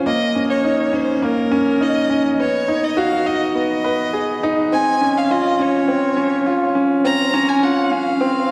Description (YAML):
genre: electronica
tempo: 103 BPM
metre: 4/4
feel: straight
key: unclear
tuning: A4 = 441 Hz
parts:
  - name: bright concert grand piano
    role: riff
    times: 0.0-8.5 s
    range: Bb3 to Cb5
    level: -19 LUFS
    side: equal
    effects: none
  - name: rich violin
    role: melody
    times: 0.1-8.5 s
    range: Bb4 to Bb5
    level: -24 LUFS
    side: equal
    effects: none
room: wet scoring stage reverb, RT60 1.8 s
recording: high-pass filter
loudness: -18 LUFS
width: mono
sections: 0.0-8.5 A section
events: build-up 0.0-8.5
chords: 0.1 Bbmadd11; 2.4 Cb6; 4.7 Dbmaj7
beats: | 0.06 0.65 1.23 1.81 | 2.39 2.98 3.56 4.14 | 4.72 5.30 5.89 6.47 | 7.05 7.63 8.22